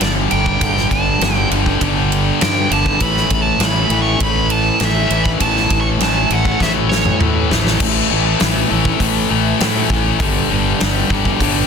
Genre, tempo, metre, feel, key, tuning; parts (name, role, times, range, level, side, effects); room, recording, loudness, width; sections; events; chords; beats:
quiet-loud alternative rock; 100 BPM; 4/4; straight; A4 = 438 Hz
nasal lead guitar with a parked wah; melody; 0.0-7.2 s; C#5 to C#6; -19 LUFS; right 3 dB; overdrive, tape echo
fuzz guitar; riff; 0.0-11.7 s; G2 to A3; -22 LUFS; right 12 dB; distortion
tight distorted guitar; riff; 0.0-11.7 s; G2 to A3; -19 LUFS; left 13 dB; distortion
fuzz fingered electric bass; bass; 0.0-11.6 s; G1 to A2; -20 LUFS; equal; overdrive
huge arena drum kit; drums; 0.0-11.5 s; crash cymbal, hi-hat, kick drum, ride cymbal, snare drum, toms; -19 LUFS; equal
light reverb, small room ambience; dense, heavily limited modern master; -13 LUFS; side -6 dB against mid
0.0-7.8 A section; 7.8-11.7 B section
lead electric guitar solo 0.0-7.8; drum fill 6.6-7.8
0.0 G5; 3.0 A5; 10.2 G5
0.02 | 0.62 1.22 1.82 2.42 | 3.02 3.61 4.21 4.81 | 5.41 6.01 6.61 7.21 | 7.81 8.41 9.01 9.61 | 10.21 10.81 11.41